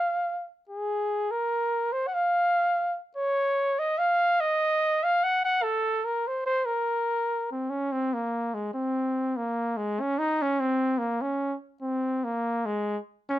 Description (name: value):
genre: mexican folk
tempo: 145 BPM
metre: 3/4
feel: straight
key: Bb minor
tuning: A4 = 440 Hz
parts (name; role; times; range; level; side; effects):
- dark trumpet; solo; 0.0-13.4 s; Ab3 to Gb5; -24 LUFS; equal; none
room: light reverb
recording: close, detailed microphones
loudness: -25 LUFS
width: side -14 dB against mid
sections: 0.0-8.1 A section; 8.1-13.4 B section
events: none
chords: none